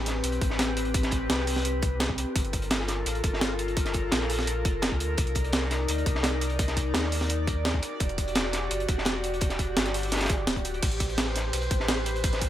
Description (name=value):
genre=liquid drum and bass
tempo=170 BPM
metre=4/4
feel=straight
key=unclear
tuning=A4 = 439 Hz
part: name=airy breathy pad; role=sustained chords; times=0.0-12.5 s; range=C4 to D5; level=-31 LUFS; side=left 1 dB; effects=chorus
part: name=sub bass with octave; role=bass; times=0.0-12.5 s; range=D1 to Eb2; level=-31 LUFS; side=equal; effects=none
part: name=breakbeat sampler-style drum kit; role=drums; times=0.1-12.5 s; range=crash cymbal, hi-hat, ride cymbal, snare drum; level=-30 LUFS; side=right 1 dB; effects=none
part: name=crunchy breakbeat drum kit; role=drums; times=0.1-12.5 s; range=hi-hat, snare drum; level=-33 LUFS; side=equal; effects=high-pass filter on hats, high-pass filter on snare, high-pass filter on room
part: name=electronic kick drum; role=drums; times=0.4-12.5 s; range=none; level=-28 LUFS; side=equal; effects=none
room=studio reverb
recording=none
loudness=-25 LUFS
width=side -12 dB against mid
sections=0.0-12.5 A section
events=none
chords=0.0 Am9; 2.4 Gm9; 5.2 Cm9; 7.8 Em9; 10.8 Am9